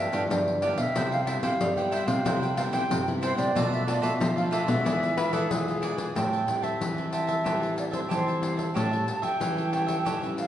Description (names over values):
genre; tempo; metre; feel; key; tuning
samba and choro; 92 BPM; 4/4; straight; A minor; A4 = 439 Hz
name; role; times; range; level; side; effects
silver concert flute; melody; 0.0-10.5 s; C5 to A5; -30 LUFS; right 1 dB; none
cavaquinho; accompaniment; 0.0-10.4 s; D4 to A5; -33 LUFS; right 3 dB; none
nylon-string guitar; accompaniment; 0.0-10.5 s; G2 to F4; -33 LUFS; left 3 dB; none
nylon-string guitar; bass; 0.0-10.5 s; G2 to G3; -30 LUFS; equal; none
pandeiro; percussion; 0.1-10.5 s; none; -32 LUFS; left 2 dB; none
growling tenor saxophone; second line; 5.2-6.2 s; G#4 to B4; -31 LUFS; left 3 dB; none
room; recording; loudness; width
wet recital hall reverb, RT60 1.6 s; recorded in a church or concert hall, nothing above 10.6 kHz; -24 LUFS; side -11 dB against mid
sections
0.0-6.2 A section; 6.2-10.5 B section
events
none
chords
0.0 G6; 1.0 Cmaj7; 3.6 Bm7b5; 4.9 E7b9; 6.2 Am7; 8.8 A7